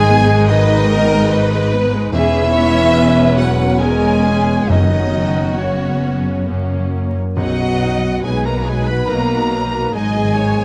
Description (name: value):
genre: classical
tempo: 69 BPM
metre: 3/4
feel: uneven beats, rubato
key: B major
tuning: A4 = 442 Hz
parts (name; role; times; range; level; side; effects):
- warm studio violin section; melody; 0.0-10.6 s; C#5 to B5; -25 LUFS; equal; none
- mellow clarinet; second line; 0.0-10.6 s; C#4 to B4; -27 LUFS; equal; none
- rich studio violin section; second line; 0.0-10.6 s; F#4 to D#5; -26 LUFS; equal; none
- silver concert flute; second line; 0.0-10.6 s; C#5 to B5; -25 LUFS; equal; none
- rich studio viola section; accompaniment; 0.0-10.6 s; D#3 to G#4; -24 LUFS; equal; none
- mellow French horn section; sustained chords; 0.0-10.6 s; C#3 to B3; -23 LUFS; equal; none
- concert harp; arpeggios; 0.0-10.6 s; E2 to B4; -26 LUFS; equal; none
- warm studio cello section; bass; 0.0-10.6 s; E2 to B2; -24 LUFS; equal; none
- warm studio double bass section; bass; 0.0-10.6 s; E1 to B1; -23 LUFS; equal; none
- timpani; percussion; 4.7-8.6 s; F#2 to B2; -24 LUFS; equal; none
room: light reverb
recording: close, detailed microphones, vinyl crackle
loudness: -15 LUFS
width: mono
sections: 0.0-10.6 A section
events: none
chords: 0.0 G#m; 2.1 C#m7/E; 4.7 F#sus4; 6.5 F#; 7.4 B; 9.9 G#m